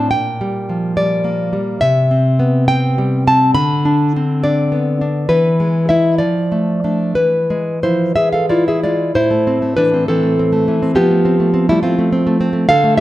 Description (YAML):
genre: romantic piece for solo classical guitar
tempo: 60-71 BPM (dotted quarters)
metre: 6/8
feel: rubato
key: A minor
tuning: A4 = 440 Hz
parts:
  - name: nylon-string guitar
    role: solo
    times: 0.0-13.0 s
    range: A2 to B5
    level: -13 LUFS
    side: equal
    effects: none
room: moderate recital hall reverb, RT60 1.6 s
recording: none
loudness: -13 LUFS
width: side -15 dB against mid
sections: 0.0-9.2 A section; 9.2-13.0 B section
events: none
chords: 0.1 Gm/Bb; 1.8 C; 3.6 Bm/D; 5.3 E; 6.2 Dm/F; 7.2 E; 9.2 Am; 11.0 F